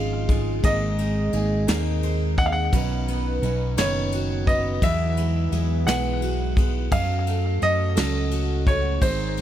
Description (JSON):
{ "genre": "six-eight pop ballad", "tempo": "57 BPM (dotted quarters)", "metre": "6/8", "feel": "straight", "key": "unclear", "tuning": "A4 = 440 Hz", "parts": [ { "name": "clear baby grand piano", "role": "melody", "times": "0.0-9.4 s", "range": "C5 to Gb5", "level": "-28 LUFS", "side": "equal", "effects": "ping-pong delay" }, { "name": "picked steel-string acoustic guitar", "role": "accompaniment", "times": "0.0-9.4 s", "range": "Ab2 to C5", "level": "-28 LUFS", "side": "equal", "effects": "double-tracked left and right" }, { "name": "fingerpicked steel-string acoustic guitar", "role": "arpeggios", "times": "0.0-9.4 s", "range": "Ab2 to Cb5", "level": "-31 LUFS", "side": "right 8 dB", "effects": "none" }, { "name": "fingered electric bass", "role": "bass", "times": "0.0-9.4 s", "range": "Gb1 to Gb2", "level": "-25 LUFS", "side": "equal", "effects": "none" }, { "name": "soft brush drum kit", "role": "drums", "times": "0.3-9.4 s", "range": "kick drum, ride cymbal, snare drum", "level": "-26 LUFS", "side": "equal", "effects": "none" } ], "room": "small room reverb", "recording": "none", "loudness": "-20 LUFS", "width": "side -11 dB against mid", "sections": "0.0-9.4 A section", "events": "none", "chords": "0.0 Dbadd9; 0.6 Abadd9; 2.7 Cbadd9; 4.8 Eadd9; 6.9 Gbm" }